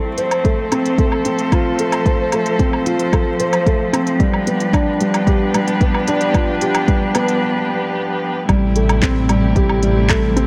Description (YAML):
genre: piano and strings electronica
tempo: 112 BPM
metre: 4/4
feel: straight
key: A minor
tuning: A4 = 440 Hz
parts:
  - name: muted string quartet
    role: sustained chords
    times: 0.0-10.5 s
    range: C3 to C5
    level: -24 LUFS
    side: equal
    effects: sidechain pumping
  - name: felt-muted upright piano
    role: riff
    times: 0.0-10.5 s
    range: G3 to C5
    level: -20 LUFS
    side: equal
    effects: tape echo
  - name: organic electronic drum kit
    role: drums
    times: 0.2-10.5 s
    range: handclaps, hi-hat, woodblock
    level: -27 LUFS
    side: equal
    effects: high-pass filter on hats, high-pass filter on perc, high-pass filter on snare, high-pass filter on room
  - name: electronic kick drum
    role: drums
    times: 0.4-10.2 s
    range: none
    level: -20 LUFS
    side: equal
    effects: overdrive
  - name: dark detuned saw bass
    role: bass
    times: 8.5-10.5 s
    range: A1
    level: -20 LUFS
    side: equal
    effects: tube saturation, sidechain pumping
room: moderate lush hall reverb, RT60 2.3 s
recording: none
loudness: -17 LUFS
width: mono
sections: 0.0-8.5 A section; 8.5-10.5 B section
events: build-up 0.0-8.5; break 7.4-8.5; drop 8.5-10.5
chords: 0.0 F; 4.2 G7; 8.5 Am7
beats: 0.45 0.99 1.52 | 2.06 2.60 3.13 3.67 | 4.20 4.74 5.28 5.81 | 6.35 6.88 7.42 7.95 | 8.49 9.03 9.56 10.10